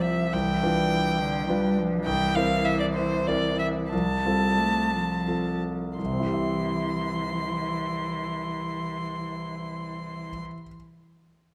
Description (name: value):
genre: quick classical-period movement for piano trio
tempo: 55-70 BPM (dotted quarters)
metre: 6/8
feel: rubato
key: C major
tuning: A4 = 440 Hz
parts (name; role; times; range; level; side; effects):
- rich violin; melody; 0.0-10.4 s; C5 to C6; -32 LUFS; equal; none
- rich cello; second line; 0.0-10.4 s; D3 to A3; -32 LUFS; equal; none
- clear concert grand piano; accompaniment; 0.0-10.8 s; C2 to E5; -31 LUFS; equal; none
room: moderate recital hall reverb, RT60 1.7 s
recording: close, detailed microphones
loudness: -27 LUFS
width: mono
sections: 0.0-6.0 A section; 6.0-10.3 B section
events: slowing down 1.2-6.0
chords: 0.3 G7/C; 2.1 C7; 3.9 F/C; 6.0 C